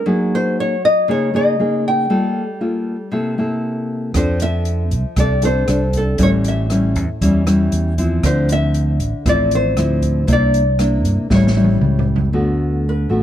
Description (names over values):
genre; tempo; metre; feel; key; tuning
bossa nova; 117 BPM; 4/4; straight; unclear; A4 = 436 Hz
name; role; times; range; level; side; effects
nylon-string guitar; melody; 0.0-13.2 s; A4 to G5; -20 LUFS; left 1 dB; none
nylon-string guitar; accompaniment; 0.0-13.2 s; A2 to A4; -18 LUFS; left 1 dB; none
fingered electric bass; bass; 4.1-13.2 s; A1 to G2; -18 LUFS; right 1 dB; none
open jazz drum kit; drums; 4.1-12.3 s; hi-hat, kick drum, rim click, snare drum, toms; -22 LUFS; right 1 dB; none
room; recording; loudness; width
little or no reverb; dark, warm production; -14 LUFS; side -11 dB against mid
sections
0.0-12.3 A section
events
drum fill 11.3-12.3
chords
0.0 Gb69; 2.1 Gm9; 3.1 C6; 4.1 F6; 6.2 A7; 8.2 Dm9; 10.3 C9; 11.3 A7; 12.3 D6